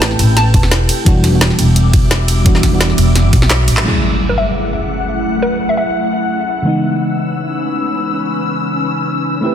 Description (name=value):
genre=liquid drum and bass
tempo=172 BPM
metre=4/4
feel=straight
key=unclear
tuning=A4 = 440 Hz
part: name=hollow square pluck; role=melody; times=0.0-0.7, 4.3-5.8 s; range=B4 to A5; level=-20 LUFS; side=equal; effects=chorus, cassette tape, ping-pong delay
part: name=mellow FM electric piano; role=accompaniment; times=0.0-9.5 s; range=C#3 to B4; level=-18 LUFS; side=right 1 dB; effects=chorus, ping-pong delay
part: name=glassy FM pad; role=sustained chords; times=0.0-9.5 s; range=G3 to E6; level=-19 LUFS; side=left 2 dB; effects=ensemble chorus, built-in reverb, sidechain pumping
part: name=upright bass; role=bass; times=0.0-3.8 s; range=E1 to B1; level=-13 LUFS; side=equal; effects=none
part: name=drum and bass drum kit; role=drums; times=0.0-3.9 s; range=crash cymbal, handclaps, hi-hat, ride cymbal, snare drum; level=-17 LUFS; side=right 1 dB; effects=overdrive, low-pass filter on hats, small room ambience, low-pass filter on snare, low-pass filter on cymbals
part: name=electronic kick drum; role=drums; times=0.5-3.4 s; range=none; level=-12 LUFS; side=equal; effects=overdrive, small room ambience
part: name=impact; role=sound effects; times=3.9-5.2 s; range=none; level=-21 LUFS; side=equal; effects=none
room=light reverb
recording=dense, heavily limited modern master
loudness=-11 LUFS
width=side -9 dB against mid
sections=0.0-3.9 A section; 3.9-9.5 B section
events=drop 0.0-3.9; drum fill 3.5-3.9; band accent 3.8; impact 3.9-5.2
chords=0.0 Am7; 1.1 Em7; 3.9 F#m7; 6.6 C#m7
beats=0.02 0.37 0.71 | 1.06 1.41 1.76 2.11 | 2.46 2.81 3.16 3.51 | 3.85 4.20 4.55 4.90 | 5.25 5.60 5.95 6.30 | 6.64 6.99 7.34 7.69 | 8.04 8.39 8.74 9.09 | 9.44